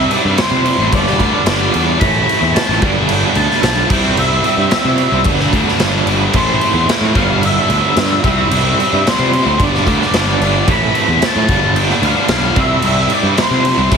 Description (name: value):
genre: quiet-loud alternative rock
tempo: 111 BPM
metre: 4/4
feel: straight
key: unclear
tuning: A4 = 437 Hz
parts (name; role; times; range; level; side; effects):
- octave-fuzz lead guitar; melody; 0.0-13.9 s; C5 to B5; -18 LUFS; left 1 dB; distortion
- heavy high-gain guitar; riff; 0.0-14.0 s; G2 to C4; -21 LUFS; left 1 dB; distortion
- overdriven semi-hollow guitar; riff; 0.0-14.0 s; G2 to E4; -20 LUFS; right 14 dB; tremolo
- tight distorted guitar; riff; 0.0-14.0 s; G2 to E4; -22 LUFS; left 12 dB; distortion
- fuzz picked electric bass; bass; 0.0-14.0 s; G1 to C3; -18 LUFS; equal; overdrive
- raw garage drum kit; drums; 0.1-14.0 s; crash cymbal, kick drum, snare drum; -17 LUFS; equal; none
room: light reverb, small room ambience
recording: heavily compressed radio sound, multiband compression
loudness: -11 LUFS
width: side -6 dB against mid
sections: 0.0-14.0 A section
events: none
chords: 0.0 C; 0.9 G; 2.0 Am; 2.8 G; 3.9 C; 5.3 G; 6.3 Am; 7.2 G; 8.2 C; 9.6 G; 10.7 Am; 11.5 G; 12.6 C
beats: 0.38 0.92 1.46 | 2.00 2.54 3.09 3.63 | 4.17 4.71 5.25 5.80 | 6.34 6.88 7.42 7.96 | 8.51 9.05 9.59 10.13 | 10.67 11.21 11.75 12.29 | 12.83 13.37 13.91